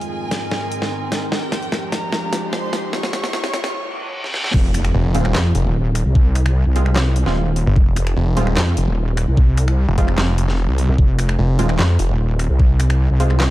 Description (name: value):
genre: heavy wobble dubstep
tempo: 149 BPM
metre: 4/4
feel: half-time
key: F minor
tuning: A4 = 436 Hz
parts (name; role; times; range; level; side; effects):
- clear studio violin section; melody; 0.0-4.5 s; G4 to Db6; -28 LUFS; right 1 dB; tape echo
- evolving wavetable pad; sustained chords; 0.0-3.7 s; Eb2 to Bb4; -28 LUFS; equal; chorus, built-in reverb, sidechain pumping
- dubstep drum kit; drums; 0.0-13.5 s; crash cymbal, finger snaps, handclaps, hi-hat, snare drum; -24 LUFS; equal; overdrive
- riser, reverse cymbal and impact; sound effects; 0.7-6.2 s; none; -29 LUFS; equal; none
- wobble bass; bass; 4.5-13.5 s; Eb1 to F2; -16 LUFS; equal; chorus, overdrive
- electronic kick drum; drums; 4.5-12.7 s; none; -14 LUFS; equal; overdrive
- snarling distorted saw bass; bass; 4.9-12.1 s; Eb1 to C2; -17 LUFS; equal; distortion, overdrive
- orchestra-hit-like synth stab; stabs; 5.1-13.4 s; Ab3 to F4; -26 LUFS; right 2 dB; built-in reverb, tape echo
room: digital ambience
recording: dark, warm production, high-pass filter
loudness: -16 LUFS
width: side -16 dB against mid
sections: 0.0-4.5 A section; 4.5-13.5 B section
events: build-up 0.0-4.5; drum fill 0.0-3.7, 4.2-4.5; filter sweep 0.0-4.5; riser 0.7-3.7; reverse cymbal 3.7-4.5; drop 4.5-13.5; impact 4.5-6.2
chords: 0.0 Abadd9; 1.3 Fmadd9; 2.9 Ebsus4; 4.5 Fm